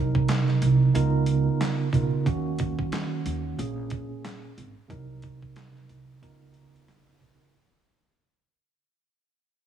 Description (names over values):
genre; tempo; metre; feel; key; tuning
hip hop, boom-bap hip-hop; 91 BPM; 4/4; swing 59% on 16ths; unclear; A4 = 440 Hz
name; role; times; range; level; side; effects
mellow tine electric piano; accompaniment; 0.0-7.5 s; Bb2 to Bb4; -26 LUFS; right 3 dB; medium stereo tremolo, cassette tape
upright bass; bass; 0.0-7.4 s; Ab1 to Eb2; -26 LUFS; right 3 dB; none
boom bap sampler-style drum kit; drums; 0.1-7.4 s; handclaps, hi-hat, kick drum, snare drum; -31 LUFS; right 1 dB; none
room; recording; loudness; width
light reverb; heavily compressed radio sound, vinyl crackle; -22 LUFS; side -9 dB against mid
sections
0.0-7.5 A section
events
fade-out 0.0-7.5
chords
0.0 Cm7b5; 0.9 Db13; 2.3 Ebm7; 3.6 Bbm7; 4.9 Cm7b5; 6.2 Db13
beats
0.29 0.94 1.60 | 2.26 2.92 3.58 4.24 | 4.90 5.56 6.22 6.88